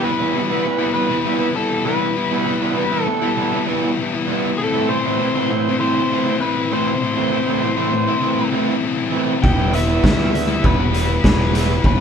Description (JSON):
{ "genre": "indie rock", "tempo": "99 BPM", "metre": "4/4", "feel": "straight", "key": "E minor", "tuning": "A4 = 436 Hz", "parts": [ { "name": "biting lead guitar", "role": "melody", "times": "0.0-12.0 s", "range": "A4 to G5", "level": "-23 LUFS", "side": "left 2 dB", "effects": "overdrive" }, { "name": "biting overdriven guitar", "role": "riff", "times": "0.0-12.0 s", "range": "A2 to E4", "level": "-20 LUFS", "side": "left 4 dB", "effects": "none" }, { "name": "crunchy overdriven guitar", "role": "riff", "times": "0.0-12.0 s", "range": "E3 to E4", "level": "-22 LUFS", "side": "right 6 dB", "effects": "none" }, { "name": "growling picked electric bass", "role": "bass", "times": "9.4-12.0 s", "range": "E1 to D2", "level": "-20 LUFS", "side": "equal", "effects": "overdrive" }, { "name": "raw garage drum kit", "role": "drums", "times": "9.4-12.0 s", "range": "hi-hat, kick drum, snare drum", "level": "-17 LUFS", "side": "equal", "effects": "none" } ], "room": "moderate studio ambience, RT60 0.5 s", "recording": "band playing live in one room", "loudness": "-16 LUFS", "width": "side -7 dB against mid", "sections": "0.0-12.0 A section", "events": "none", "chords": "0.0 Em; 4.6 Am; 9.4 Em" }